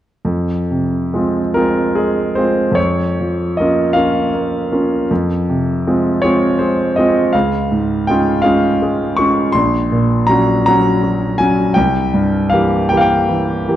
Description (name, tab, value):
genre	classical, romantic nocturne for solo piano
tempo	47-55 BPM (dotted quarters)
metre	6/8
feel	rubato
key	F minor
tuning	A4 = 441 Hz
part	clear concert grand piano	solo	0.2-13.8 s	Bb1 to Db6	-13 LUFS	equal	none
room	moderate recital hall reverb, RT60 1.7 s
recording	dark, warm production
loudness	-13 LUFS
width	side -12 dB against mid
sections	0.3-13.8 A section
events	none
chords	0.3 Fm; 2.8 Bbm/F; 5.1 Fm; 7.3 Db; 9.5 Gb/Bb; 11.8 C7